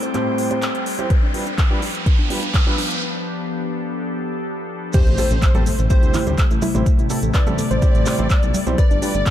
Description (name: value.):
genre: progressive house.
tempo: 125 BPM.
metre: 4/4.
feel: straight.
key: A minor.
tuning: A4 = 440 Hz.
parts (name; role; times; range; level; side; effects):
evolving wavetable pad; sustained chords; 0.0-9.3 s; C3 to C5; -26 LUFS; left 3 dB; chorus, built-in reverb, sidechain pumping.
soft round pluck; arpeggios; 0.0-9.2 s; A3 to C5; -29 LUFS; left 1 dB; chorus, sidechain pumping, tape echo.
deep house drum kit; drums; 0.0-9.3 s; crash cymbal, handclaps, hi-hat; -28 LUFS; equal; none.
riser and impact; sound effects; 0.0-6.9 s; none; -25 LUFS; equal; none.
drifting glass-harmonics texture; texture; 0.0-3.0 s; G5; -36 LUFS; right 5 dB; chorus, built-in reverb, sidechain pumping.
dark grand piano; stabs; 0.1-9.1 s; A2 to C5; -26 LUFS; right 3 dB; sidechain pumping, low-pass filter, tape echo.
electronic kick drum; drums; 1.1-9.3 s; none; -16 LUFS; equal; none.
plucky unison lead; melody; 4.9-9.3 s; C5 to D5; -28 LUFS; left 1 dB; tape echo.
warm studio violin section; second line; 4.9-9.3 s; C5 to D5; -32 LUFS; left 2 dB; sidechain pumping, tape echo.
maracas; percussion; 4.9-9.3 s; none; -35 LUFS; right 5 dB; none.
dark detuned saw bass; bass; 5.1-9.2 s; G1 to D2; -23 LUFS; equal; sidechain pumping.
bongos and congas; percussion; 5.2-9.2 s; none; -29 LUFS; right 1 dB; sidechain pumping on perc.
room: light reverb.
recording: dark, warm production.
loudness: -16 LUFS.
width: side -11 dB against mid.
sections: 0.0-4.9 A section; 4.9-9.3 B section.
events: build-up 0.0-4.9; riser 0.0-3.0; filter sweep on synth pluck 0.0-4.9; filter sweep on grand piano 0.0-4.9; break 3.0-4.9; drop 4.9-9.3; impact 4.9-6.9.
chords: 0.0 Am7; 1.1 G7; 4.9 Am7; 8.8 G7.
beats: 0.14 0.62 | 1.10 1.58 2.06 2.54 | 3.02 3.50 3.98 4.46 | 4.94 5.42 5.90 6.38 | 6.86 7.34 7.82 8.30 | 8.78 9.26.